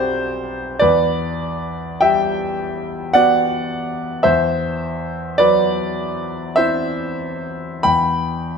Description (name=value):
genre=classical, impressionist solo piano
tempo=45-56 BPM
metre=3/4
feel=rubato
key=E minor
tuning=A4 = 440 Hz
part: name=warm grand piano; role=solo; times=0.0-8.6 s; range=B1 to B5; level=-17 LUFS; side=equal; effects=none
room=light reverb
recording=close, detailed microphones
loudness=-16 LUFS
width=side -6 dB against mid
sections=0.0-8.6 A section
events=none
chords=0.0 Cmaj7#11/B; 0.8 Em9; 4.2 D13/E; 7.8 Em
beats=| 0.82 2.02 3.15 | 4.25 5.38 6.55 | 7.82